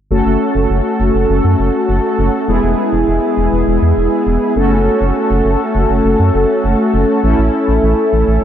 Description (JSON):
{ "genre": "synth-pop", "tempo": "101 BPM", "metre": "4/4", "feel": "straight", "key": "F# minor", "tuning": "A4 = 440 Hz", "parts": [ { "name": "mellow synth brass", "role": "accompaniment", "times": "0.1-8.4 s", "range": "G#3 to A4", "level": "-13 LUFS", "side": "equal", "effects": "chorus, shimmer reverb" }, { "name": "round analog bass", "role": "bass", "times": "0.1-8.4 s", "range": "E1 to F#2", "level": "-15 LUFS", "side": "equal", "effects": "none" } ], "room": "wet lush hall reverb, RT60 2.8 s", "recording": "dreamy mix soaked in reverb", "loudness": "-11 LUFS", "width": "side -10 dB against mid", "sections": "0.1-8.4 A section", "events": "none", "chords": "0.1 F#m; 2.5 E; 4.6 F#m; 7.2 A" }